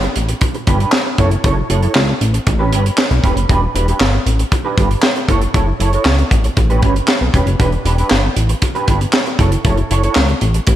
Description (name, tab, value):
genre	early-eighties boogie funk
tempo	117 BPM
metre	4/4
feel	straight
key	E dorian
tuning	A4 = 440 Hz
part	electric guitar through a small old amp	riff	0.0-10.7 s	C#4 to C#5	-20 LUFS	right 3 dB	ensemble chorus, slapback echo
part	chorused synth bass	bass	0.0-10.8 s	E1 to C#2	-15 LUFS	equal	none
part	tight funk drum kit	drums	0.0-10.8 s	handclaps, hi-hat, kick drum, snare drum	-16 LUFS	equal	none
room	light reverb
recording	none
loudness	-12 LUFS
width	side -12 dB against mid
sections	0.0-10.8 A section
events	none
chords	0.0 Em7 (rootless); 1.2 F#m7; 2.5 A9; 3.5 Em7; 5.3 F#m7; 6.6 A9; 7.6 Em7; 9.4 F#m7